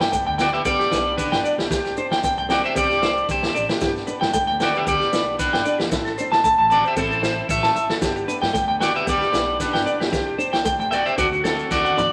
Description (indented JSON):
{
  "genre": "highlife guitar band",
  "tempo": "114 BPM",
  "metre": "4/4",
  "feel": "swing 54% on 16ths",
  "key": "G major",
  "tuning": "A4 = 444 Hz",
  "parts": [
    { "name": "fingerpicked old ladder-braced acoustic guitar", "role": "accompaniment", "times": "0.0-12.1 s", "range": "A3 to E4", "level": "-33 LUFS", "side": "equal", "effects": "none" },
    { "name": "combo organ", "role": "sustained chords", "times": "0.0-12.1 s", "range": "A3 to A4", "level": "-36 LUFS", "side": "equal", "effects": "none" },
    { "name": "semi-hollow electric guitar", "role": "arpeggios", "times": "0.0-12.1 s", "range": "F#4 to A5", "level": "-24 LUFS", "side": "equal", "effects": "spring reverb" },
    { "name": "upright bass", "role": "bass", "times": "0.0-12.1 s", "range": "G1 to G2", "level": "-37 LUFS", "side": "equal", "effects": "none" },
    { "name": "vintage drum kit", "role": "drums", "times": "0.0-12.1 s", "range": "kick drum, snare drum, toms", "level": "-29 LUFS", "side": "equal", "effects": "none" },
    { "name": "maracas", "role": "percussion", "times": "0.1-12.1 s", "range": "none", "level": "-40 LUFS", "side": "equal", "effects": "none" },
    { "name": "electric guitar at the edge of break-up", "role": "melody", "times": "0.4-12.1 s", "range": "C4 to E5", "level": "-24 LUFS", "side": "equal", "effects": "spring reverb" }
  ],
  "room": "wet studio reverb, RT60 0.6 s",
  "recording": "none",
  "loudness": "-21 LUFS",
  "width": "mono",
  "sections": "0.0-12.1 A section",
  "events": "drum fill 11.7-12.1",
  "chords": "0.0 G; 1.7 Csus2; 3.8 G; 5.9 Am; 8.0 G; 10.1 Csus2; 11.2 D"
}